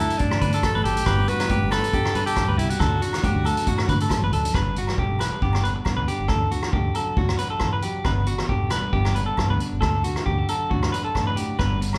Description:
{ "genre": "highlife guitar band", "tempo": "137 BPM", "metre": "4/4", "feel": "swing 54% on 16ths", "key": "G major", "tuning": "A4 = 439 Hz", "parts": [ { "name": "edgy alto saxophone", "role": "melody", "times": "0.0-4.1 s", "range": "D4 to B4", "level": "-29 LUFS", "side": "equal", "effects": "none" }, { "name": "electric guitar at the edge of break-up", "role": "accompaniment", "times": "0.0-12.0 s", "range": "G2 to B4", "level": "-34 LUFS", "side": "equal", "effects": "none" }, { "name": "clean electric guitar", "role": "arpeggios", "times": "0.0-11.8 s", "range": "F#4 to B4", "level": "-29 LUFS", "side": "equal", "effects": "none" }, { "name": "fingered electric bass", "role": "bass", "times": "0.0-11.9 s", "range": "E1 to D3", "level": "-29 LUFS", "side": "equal", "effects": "none" }, { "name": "vintage drum kit", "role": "drums", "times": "0.1-12.0 s", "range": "hi-hat, kick drum, rim click", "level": "-27 LUFS", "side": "equal", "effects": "none" }, { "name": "congas", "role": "percussion", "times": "0.2-4.5 s", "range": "none", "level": "-34 LUFS", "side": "equal", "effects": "none" }, { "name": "agogo bells", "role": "percussion", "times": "0.3-12.0 s", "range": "none", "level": "-39 LUFS", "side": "equal", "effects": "none" } ], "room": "moderate large studio reverb, RT60 1.2 s", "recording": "band playing live in one room", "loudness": "-23 LUFS", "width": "mono", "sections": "0.0-4.5 A section; 4.5-12.0 B section", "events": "drum fill 4.2-4.5", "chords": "0.0 D; 1.1 G; 2.8 D; 4.5 G; 6.3 D; 8.1 G; 9.8 D" }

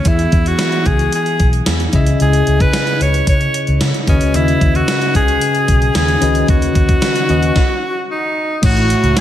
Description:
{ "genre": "1980s-style pop", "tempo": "112 BPM", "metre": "4/4", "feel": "straight", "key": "unclear", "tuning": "A4 = 440 Hz", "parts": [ { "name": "edgy alto saxophone", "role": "melody", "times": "0.0-9.2 s", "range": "C#4 to C#5", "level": "-18 LUFS", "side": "equal", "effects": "none" }, { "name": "bell-like tine electric piano", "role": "accompaniment", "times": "0.0-9.2 s", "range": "A2 to E5", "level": "-19 LUFS", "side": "left 3 dB", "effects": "none" }, { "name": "vintage muted fingered electric bass", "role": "bass", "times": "0.1-9.1 s", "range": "A1 to C#3", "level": "-16 LUFS", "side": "equal", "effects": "none" }, { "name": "gated 80s digital drum machine", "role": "drums", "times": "0.1-9.2 s", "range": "crash cymbal, hi-hat, kick drum, snare drum", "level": "-16 LUFS", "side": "equal", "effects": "gated reverb, gated reverb snare" }, { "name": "mellow synth brass", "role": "stabs", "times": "8.6-9.2 s", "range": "A3 to F#4", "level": "-24 LUFS", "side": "right 1 dB", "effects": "chorus" } ], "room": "moderate plate reverb, RT60 2.1 s", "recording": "dreamy mix soaked in reverb", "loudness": "-12 LUFS", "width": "side -11 dB against mid", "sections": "0.0-8.6 A section", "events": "stop 7.6-8.6", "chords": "0.1 E; 1.9 C#madd9; 4.1 Badd9; 8.6 A6" }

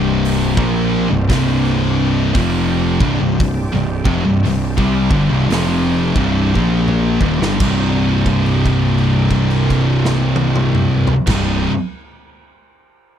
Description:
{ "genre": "stoner and doom metal", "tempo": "57 BPM", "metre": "4/4", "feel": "swing 62% on 8ths", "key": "C minor", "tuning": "A4 = 438 Hz", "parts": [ { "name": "overdriven tonewheel organ", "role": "sustained chords", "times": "0.0-11.7 s", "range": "C4 to D5", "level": "-30 LUFS", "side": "right 2 dB", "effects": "none" }, { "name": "scooped high-gain guitar", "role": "riff", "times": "0.0-11.7 s", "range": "C2 to Eb4", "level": "-22 LUFS", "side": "right 1 dB", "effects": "distortion" }, { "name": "thick fuzz guitar", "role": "riff", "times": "0.0-11.7 s", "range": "C2 to Bb3", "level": "-18 LUFS", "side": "left 6 dB", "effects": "distortion" }, { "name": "thick fuzz guitar", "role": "riff", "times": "0.0-11.7 s", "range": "C2 to Bb3", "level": "-20 LUFS", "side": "right 8 dB", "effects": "distortion" }, { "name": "fuzz picked electric bass", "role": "bass", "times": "0.0-11.7 s", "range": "C1 to C2", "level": "-21 LUFS", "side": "equal", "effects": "overdrive" }, { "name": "big rock drum kit", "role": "drums", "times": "0.2-11.5 s", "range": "crash cymbal, hi-hat, kick drum, snare drum, toms", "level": "-22 LUFS", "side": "equal", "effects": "none" } ], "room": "little or no reverb", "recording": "none", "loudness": "-13 LUFS", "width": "side -9 dB against mid", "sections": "0.0-7.6 A section; 7.6-11.8 B section", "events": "drum fill 6.6-7.6; held note 7.6-11.2", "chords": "0.0 C5; 7.6 Cm" }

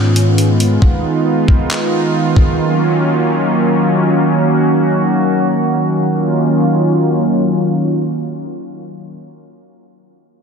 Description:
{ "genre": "hip hop, atmospheric cloud-rap", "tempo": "136 BPM", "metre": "4/4", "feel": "half-time", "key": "Eb minor", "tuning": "A4 = 443 Hz", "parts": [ { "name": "warm analog pad", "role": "sustained chords", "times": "0.0-9.1 s", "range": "Eb3 to Gb4", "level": "-13 LUFS", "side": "right 1 dB", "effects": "chorus, sidechain pumping, low-pass filter" }, { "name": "warm 808-style bass", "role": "bass", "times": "0.0-0.8 s", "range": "Ab2", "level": "-13 LUFS", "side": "left 1 dB", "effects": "none" }, { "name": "breakbeat sampler-style drum kit", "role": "drums", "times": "0.2-2.5 s", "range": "handclaps, hi-hat, kick drum", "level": "-15 LUFS", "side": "equal", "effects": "none" } ], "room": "light reverb, digital ambience", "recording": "dense, heavily limited modern master", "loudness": "-12 LUFS", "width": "side -6 dB against mid", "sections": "0.0-6.1 A section; 6.1-9.6 B section", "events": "none", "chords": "0.0 Db9; 2.6 Ebm9" }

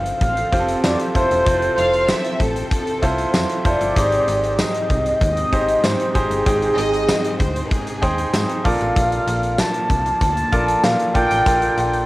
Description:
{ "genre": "1980s-style pop", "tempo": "96 BPM", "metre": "4/4", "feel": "straight", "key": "unclear", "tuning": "A4 = 440 Hz", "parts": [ { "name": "mellow horn-like synth lead", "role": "melody", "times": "0.0-12.1 s", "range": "Ab4 to A5", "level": "-20 LUFS", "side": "equal", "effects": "chorus, cassette tape" }, { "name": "bright grand piano", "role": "accompaniment", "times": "0.0-12.1 s", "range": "Ab2 to G5", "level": "-22 LUFS", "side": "right 1 dB", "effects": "cassette tape" }, { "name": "ethereal airy pad", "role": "sustained chords", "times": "0.0-12.1 s", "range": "F3 to G5", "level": "-31 LUFS", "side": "right 1 dB", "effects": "ensemble chorus, built-in reverb, cassette tape" }, { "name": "slap-like FM bass", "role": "bass", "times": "0.0-12.1 s", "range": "E1 to Bb2", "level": "-25 LUFS", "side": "equal", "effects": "none" }, { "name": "huge arena drum kit", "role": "drums", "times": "0.1-12.1 s", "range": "hi-hat, kick drum, snare drum, tambourine", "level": "-22 LUFS", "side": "equal", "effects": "cassette tape" }, { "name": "warm studio violin section", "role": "second line", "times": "1.8-8.5 s", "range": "Ab4 to F5", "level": "-27 LUFS", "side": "left 1 dB", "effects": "cassette tape, analog delay" } ], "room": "moderate booth ambience, RT60 0.2 s", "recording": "home recording on cassette", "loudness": "-16 LUFS", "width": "side -18 dB against mid", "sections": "0.0-12.1 A section", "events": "none", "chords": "0.0 Fmaj7; 4.0 Abmaj7; 8.7 Bbmaj7" }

